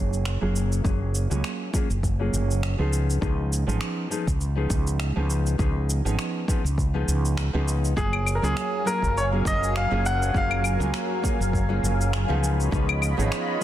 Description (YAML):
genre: sunset chillout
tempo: 101 BPM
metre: 4/4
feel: swing 56% on 16ths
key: F# major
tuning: A4 = 441 Hz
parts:
  - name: nylon-string guitar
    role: accompaniment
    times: 0.0-13.6 s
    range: E#3 to G#4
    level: -29 LUFS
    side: moving between left 4 dB and right 4 dB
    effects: auto-pan, low-pass filter, tape echo
  - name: mellow fretless electric bass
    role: bass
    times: 0.0-13.3 s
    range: F#1 to C#2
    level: -24 LUFS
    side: equal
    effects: tube saturation
  - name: electronic shaker, finger snaps and claves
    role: drums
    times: 0.1-13.5 s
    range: none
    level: -33 LUFS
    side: left 1 dB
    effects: soft clipping on snare
  - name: electronic kick drum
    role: drums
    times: 0.8-12.9 s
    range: none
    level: -26 LUFS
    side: equal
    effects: overdrive
  - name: bright baby grand piano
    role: melody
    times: 8.0-12.1 s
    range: G#4 to F#5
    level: -27 LUFS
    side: equal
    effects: tape echo
  - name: lush unison pad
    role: sustained chords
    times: 8.0-13.6 s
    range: F#3 to B5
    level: -30 LUFS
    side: left 1 dB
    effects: chorus, phaser
room: light reverb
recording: dense, heavily limited modern master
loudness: -22 LUFS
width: side -12 dB against mid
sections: 0.0-13.6 A section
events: none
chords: 0.0 F#maj9; 2.9 C#9; 8.0 F#maj9; 12.4 C#9